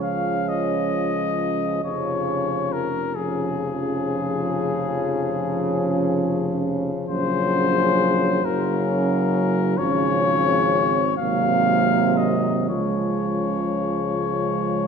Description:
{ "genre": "classical, hymn-like piece for brass band", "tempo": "37-47 BPM (dotted quarters)", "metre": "12/8", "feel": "rubato", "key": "Db major", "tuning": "A4 = 441 Hz", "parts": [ { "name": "warm cornet", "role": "melody", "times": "0.0-14.9 s", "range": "Ab4 to F5", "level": "-24 LUFS", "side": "left 5 dB", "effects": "none" }, { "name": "mellow French horn section", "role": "second line", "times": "0.0-14.9 s", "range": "Ab3 to Db4", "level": "-27 LUFS", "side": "right 8 dB", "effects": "none" }, { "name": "clear trombone", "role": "accompaniment", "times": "0.0-14.9 s", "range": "C3 to Db3", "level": "-28 LUFS", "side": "right 1 dB", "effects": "none" }, { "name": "warm euphonium", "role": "accompaniment", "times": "0.0-14.9 s", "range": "F3 to Gb3", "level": "-28 LUFS", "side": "left 2 dB", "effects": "none" }, { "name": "warm tuba", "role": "bass", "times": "0.0-14.9 s", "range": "F1 to Db2", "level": "-27 LUFS", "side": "equal", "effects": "none" } ], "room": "moderate concert hall reverb, RT60 1.9 s", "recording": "minimal, uncompressed stereo recording", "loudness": "-20 LUFS", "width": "side -6 dB against mid", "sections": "0.0-14.9 A section", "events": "none", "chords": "0.0 Db; 1.8 Db/F; 7.1 Gb/Bb; 9.8 Db/Ab; 11.2 Ab9; 12.7 Db" }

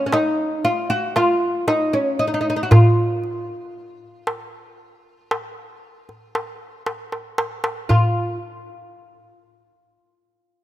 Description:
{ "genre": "Arabic maqam ensemble", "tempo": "116 BPM (eighths)", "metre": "10/8", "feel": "straight", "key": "unclear", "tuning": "A4 = 440 Hz", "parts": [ { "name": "oud", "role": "melody", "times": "0.0-8.4 s", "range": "Db4 to Gb4+25c", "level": "-20 LUFS", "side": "equal", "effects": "none" }, { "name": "darbuka", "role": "percussion", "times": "0.1-8.4 s", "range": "none", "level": "-17 LUFS", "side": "equal", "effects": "none" } ], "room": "light reverb, studio ambience", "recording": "rough home demo mix", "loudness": "-18 LUFS", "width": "side -14 dB against mid", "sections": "0.0-7.9 A section; 7.9-10.6 B section", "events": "drum fill 6.9-7.9", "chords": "none" }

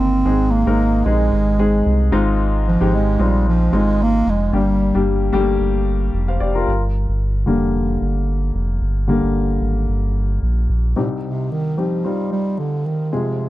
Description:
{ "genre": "piano-driven pop", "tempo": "112 BPM", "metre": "4/4", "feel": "swing 56% on 16ths", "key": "C minor", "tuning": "A4 = 438 Hz", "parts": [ { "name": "dark bass clarinet", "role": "melody", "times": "0.0-5.0, 11.0-13.5 s", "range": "Bb2 to C4", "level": "-19 LUFS", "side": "right 2 dB", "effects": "slapback echo" }, { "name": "warm baby grand piano", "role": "accompaniment", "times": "0.0-13.5 s", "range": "F1 to F5", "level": "-21 LUFS", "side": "left 3 dB", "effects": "none" }, { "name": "round analog bass", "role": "bass", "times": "0.0-10.9 s", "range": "F1 to C2", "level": "-18 LUFS", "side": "equal", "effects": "none" } ], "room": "studio ambience", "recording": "dry, close 1970s-style studio recording", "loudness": "-16 LUFS", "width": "side -16 dB against mid", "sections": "0.0-6.7 A section; 6.7-11.0 B section; 11.0-13.5 C section", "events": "grand piano solo 6.7-11.0", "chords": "0.3 Ab; 2.1 Fm7/Ab; 4.5 Gm; 11.0 Cm" }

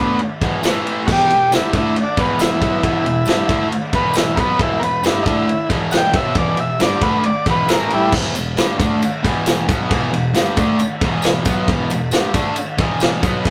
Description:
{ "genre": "garage rock duo or trio", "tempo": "136 BPM", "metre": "4/4", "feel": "straight", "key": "unclear", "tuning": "A4 = 440 Hz", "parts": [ { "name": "combo organ", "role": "melody", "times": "0.0-8.1 s", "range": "G3 to G5", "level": "-20 LUFS", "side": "equal", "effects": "none" }, { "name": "fuzz guitar", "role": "riff", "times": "0.0-13.5 s", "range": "E2 to D4", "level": "-22 LUFS", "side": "equal", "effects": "distortion" }, { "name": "vintage drum kit", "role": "drums", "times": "0.2-13.5 s", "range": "crash cymbal, kick drum, ride cymbal, snare drum", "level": "-22 LUFS", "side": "equal", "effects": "none" }, { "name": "tambourine", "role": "percussion", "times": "0.6-13.5 s", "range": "none", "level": "-34 LUFS", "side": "equal", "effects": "none" } ], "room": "moderate studio reverb, RT60 0.5 s", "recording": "rough rehearsal-room recording, tube saturation", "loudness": "-17 LUFS", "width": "mono", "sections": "0.0-8.1 A section; 8.1-13.5 B section", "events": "transistor combo organ solo 0.0-8.1", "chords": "0.0 E5; 0.6 A5; 1.1 E5; 7.7 A5; 8.1 E5" }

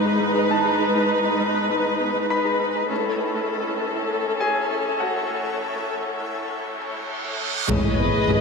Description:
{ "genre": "cinematic, hybrid orchestral and electronic film score", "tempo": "100 BPM", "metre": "4/4", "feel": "straight", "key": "G# phrygian", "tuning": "A4 = 440 Hz", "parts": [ { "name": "rich symphonic viola section", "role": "accompaniment", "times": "0.0-8.4 s", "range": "G#3 to B4", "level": "-24 LUFS", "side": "left 1 dB", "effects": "none" }, { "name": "granular cloud pad", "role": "sustained chords", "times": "0.0-8.4 s", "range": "E3 to C#5", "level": "-28 LUFS", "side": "equal", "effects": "built-in reverb" }, { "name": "warm symphonic cello section", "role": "bass", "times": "0.0-8.4 s", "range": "G#2 to A2", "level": "-30 LUFS", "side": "right 1 dB", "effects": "none" }, { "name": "bright grand piano", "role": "texture", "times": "0.0-7.7 s", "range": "F#4 to B5", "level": "-29 LUFS", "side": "left 1 dB", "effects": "digital delay" }, { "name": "thumb-piano-like synth pluck", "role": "arpeggios", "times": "0.1-8.4 s", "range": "G#3 to A4", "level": "-33 LUFS", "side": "right 1 dB", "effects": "chorus, digital delay" }, { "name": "reverse cymbal and impact", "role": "sound effects", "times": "6.8-8.4 s", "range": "none", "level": "-28 LUFS", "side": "right 1 dB", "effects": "none" }, { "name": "rich symphonic violin section", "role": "second line", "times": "7.7-8.4 s", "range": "B4 to D#5", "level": "-24 LUFS", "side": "left 4 dB", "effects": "none" }, { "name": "warm symphonic double bass section", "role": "bass", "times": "7.7-8.4 s", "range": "G#1", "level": "-26 LUFS", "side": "right 3 dB", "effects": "none" }, { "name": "taiko ensemble", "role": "drums", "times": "7.7-8.4 s", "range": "none", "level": "-27 LUFS", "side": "left 2 dB", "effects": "none" } ], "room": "wet scoring stage reverb, RT60 1.9 s", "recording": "high-pass filter", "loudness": "-20 LUFS", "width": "side -4 dB against mid", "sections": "0.0-7.7 A section", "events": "build-up 0.0-7.7; filter sweep 0.0-7.7; reverse cymbal 6.8-7.7; impact 7.7-8.4", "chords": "0.0 G#m; 2.9 A; 7.7 G#m" }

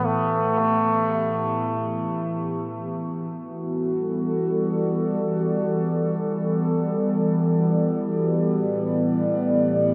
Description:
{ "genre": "ambient", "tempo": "free time", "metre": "none", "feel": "none", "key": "E minor", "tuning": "A4 = 445 Hz", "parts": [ { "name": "trombone with straight mute", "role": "melody", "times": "0.0-2.2 s", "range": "A3", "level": "-26 LUFS", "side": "equal", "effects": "dub echo" }, { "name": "warbly tape-like pad", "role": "sustained chords", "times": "0.0-9.9 s", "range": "A2 to E5", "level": "-24 LUFS", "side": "equal", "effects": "chorus, built-in reverb, phaser" } ], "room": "wet echo chamber reverb, RT60 1.9 s", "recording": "echo-heavy mix", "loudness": "-24 LUFS", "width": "mono", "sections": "0.0-2.9 A section; 2.9-9.9 B section", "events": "none", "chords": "0.0 A5; 2.9 Em11; 8.5 A7sus4" }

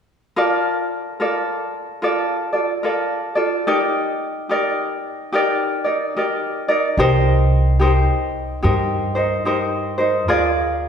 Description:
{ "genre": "Hawaiian", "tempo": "73 BPM", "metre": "4/4", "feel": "swing 62% on 8ths", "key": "Bb major", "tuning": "A4 = 440 Hz", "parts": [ { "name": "ukulele", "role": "accompaniment", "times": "0.4-10.9 s", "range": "Eb4 to D5", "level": "-18 LUFS", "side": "equal", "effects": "none" }, { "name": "upright bass", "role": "bass", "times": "7.0-10.9 s", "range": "C2 to G2", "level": "-19 LUFS", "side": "right 1 dB", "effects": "none" } ], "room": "wet recital hall reverb, RT60 1.7 s", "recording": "heard from further back in the room", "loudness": "-17 LUFS", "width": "side -7 dB against mid", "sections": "0.4-10.9 A section", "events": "none", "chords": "0.4 Bbmaj7; 3.7 Ebmaj7; 7.0 Cm7; 10.3 Bb7/D" }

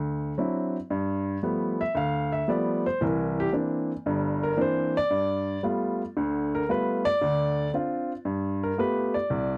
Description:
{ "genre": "solo jazz", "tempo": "114 BPM", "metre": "4/4", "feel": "swing 69% on 8ths", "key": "G mixolydian", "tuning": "A4 = 441 Hz", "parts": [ { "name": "warm upright piano", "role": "solo", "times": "0.0-9.6 s", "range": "G1 to F5", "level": "-27 LUFS", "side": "equal", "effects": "none" } ], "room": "little or no reverb", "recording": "dry, close 1970s-style studio recording", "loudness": "-27 LUFS", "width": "mono", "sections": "0.9-9.6 A section", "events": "upright piano solo 0.9-9.6", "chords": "0.0 D9; 0.9 G9; 3.0 C9; 5.1 G9; 7.2 Dm7; 8.3 G9" }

